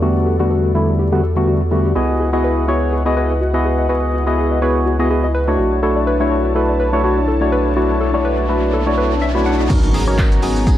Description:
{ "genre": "deep house", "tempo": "124 BPM", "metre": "4/4", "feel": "swing 55% on 16ths", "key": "unclear", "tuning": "A4 = 442 Hz", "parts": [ { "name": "warm analog pad", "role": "sustained chords", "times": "0.0-10.8 s", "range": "B3 to A#5", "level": "-24 LUFS", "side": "left 1 dB", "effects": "chorus, sidechain pumping" }, { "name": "warbly dusty pluck", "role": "arpeggios", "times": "0.0-10.8 s", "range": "F#4 to F#5", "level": "-23 LUFS", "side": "left 2 dB", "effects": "chorus, sidechain pumping, tape echo" }, { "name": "percussive organ stab", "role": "stabs", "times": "0.0-10.8 s", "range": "D3 to D#5", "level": "-17 LUFS", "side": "equal", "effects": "chorus, vintage 12-bit sampler grit, sidechain pumping, analog delay" }, { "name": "rubbery square bass", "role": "bass", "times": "0.0-10.8 s", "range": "F#1 to E2", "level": "-20 LUFS", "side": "equal", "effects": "sidechain pumping" }, { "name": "riser and impact", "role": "sound effects", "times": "7.1-10.8 s", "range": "none", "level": "-26 LUFS", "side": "equal", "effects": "none" }, { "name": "electronic kick drum", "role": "drums", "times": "9.7-10.8 s", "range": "none", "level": "-15 LUFS", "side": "equal", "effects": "none" }, { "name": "punchy analog drum machine", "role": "drums", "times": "9.7-10.8 s", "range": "crash cymbal, handclaps, hi-hat, shaker, woodblock", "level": "-27 LUFS", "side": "equal", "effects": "low-pass filter on hats, low-pass filter on cymbals, low-pass filter on perc, low-pass filter on snare" }, { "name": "tambourine and snare drum", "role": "drums", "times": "9.7-10.8 s", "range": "none", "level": "-35 LUFS", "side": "right 1 dB", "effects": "high-pass filter on snare, high-pass filter on perc, high-pass filter on room" } ], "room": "light reverb", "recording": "vinyl crackle", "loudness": "-14 LUFS", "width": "side -12 dB against mid", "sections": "0.0-9.7 A section; 9.7-10.8 B section", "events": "filter sweep on analog synth pad 0.0-9.7; filter sweep on synth pluck 0.0-9.7; riser 7.1-9.7; drop 9.7-10.8; impact 9.7-10.8", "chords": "0.0 Em11; 2.0 C#m11; 5.6 Bm11; 9.7 G#m11", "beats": "| 0.02 0.51 0.99 1.48 | 1.96 2.44 2.93 3.41 | 3.89 4.38 4.86 5.35 | 5.83 6.31 6.80 7.28 | 7.76 8.25 8.73 9.22 | 9.70 10.18 10.67" }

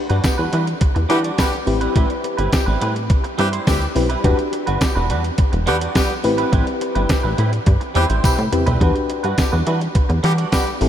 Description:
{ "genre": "early-eighties boogie funk", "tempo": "105 BPM", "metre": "4/4", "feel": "straight", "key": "E minor", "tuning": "A4 = 440 Hz", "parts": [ { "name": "mellow FM electric piano", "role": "accompaniment", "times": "0.0-10.9 s", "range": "C4 to B4", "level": "-24 LUFS", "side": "left 3 dB", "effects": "chorus" }, { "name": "clean electric guitar", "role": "riff", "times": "0.1-10.9 s", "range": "G3 to D5", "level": "-24 LUFS", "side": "right 4 dB", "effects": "ensemble chorus" }, { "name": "plucky analog bass", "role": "bass", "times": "0.1-10.9 s", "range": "E1 to E3", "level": "-19 LUFS", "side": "equal", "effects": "none" }, { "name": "crisp 8-bit digital drum machine", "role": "drums", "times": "0.1-10.9 s", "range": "hi-hat, kick drum, snare drum, toms", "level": "-20 LUFS", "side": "equal", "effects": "none" }, { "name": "clear horn section", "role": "second line", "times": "0.2-10.7 s", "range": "D3 to G4", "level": "-26 LUFS", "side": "left 1 dB", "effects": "none" }, { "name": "tambourine", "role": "percussion", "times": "0.2-10.7 s", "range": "none", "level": "-36 LUFS", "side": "left 4 dB", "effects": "none" } ], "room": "moderate huge ambient reverb, RT60 7.9 s", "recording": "dreamy mix soaked in reverb", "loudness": "-16 LUFS", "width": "side -10 dB against mid", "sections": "0.0-10.9 A section", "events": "drum fill 8.2-8.8", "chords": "0.0 Em9; 1.7 Am9; 4.2 Em9; 6.2 Am9; 8.8 Em9", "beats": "0.24 0.81 1.38 | 1.96 2.53 3.10 3.67 | 4.24 4.81 5.38 5.96 | 6.53 7.10 7.67 8.24 | 8.81 9.38 9.96 10.53" }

